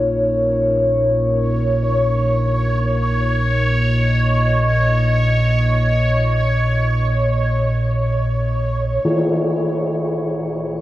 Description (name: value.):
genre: dark ambient drone.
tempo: free time.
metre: none.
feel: none.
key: Bb minor.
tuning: A4 = 440 Hz.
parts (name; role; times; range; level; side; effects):
dark analog pad; sustained chords; 0.0-9.0 s; Eb4 to Eb5; -22 LUFS; left 1 dB; chorus, shimmer reverb.
deep rumbling drone; drone; 0.0-10.8 s; Bb1 to Bb2; -18 LUFS; equal; built-in reverb.
bubbling stepped-filter texture; texture; 1.3-9.1 s; Db5; -22 LUFS; equal; chorus, built-in reverb, shimmer reverb.
tam-tam; percussion; 9.1-9.2 s; none; -18 LUFS; left 1 dB; low-pass filter on cymbals.
room: wet huge ambient reverb, RT60 8.5 s.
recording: worn, warbling old tape, cassette tape, warbly pitch drift.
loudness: -15 LUFS.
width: side -15 dB against mid.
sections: 0.0-9.0 A section; 9.0-10.8 B section.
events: fade-in on synth drone 0.0-9.0; fade-out on analog synth pad 0.0-9.0.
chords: 0.0 Bb5.